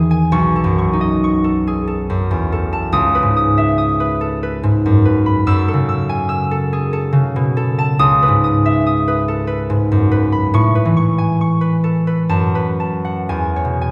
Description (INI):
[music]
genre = classical, solo harp piece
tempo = 70 BPM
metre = 3/4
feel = rubato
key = unclear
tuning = A4 = 440 Hz
[part]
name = concert harp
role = solo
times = 0.0-13.9 s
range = B1 to E6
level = -16 LUFS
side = equal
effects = none
[sound]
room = wet recital hall reverb, RT60 1.6 s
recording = recorded in a church or concert hall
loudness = -16 LUFS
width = mono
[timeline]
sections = 0.0-13.9 A section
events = none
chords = 0.4 B9; 2.9 C#m9; 5.5 F#m9; 8.0 C#m9; 10.6 Amaj9; 12.3 F#m11; 13.3 E69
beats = | 0.36 1.23 2.08 | 2.93 3.79 4.64 | 5.47 6.31 7.16 | 8.02 8.87 9.72 | 10.57 11.43 12.33 | 13.31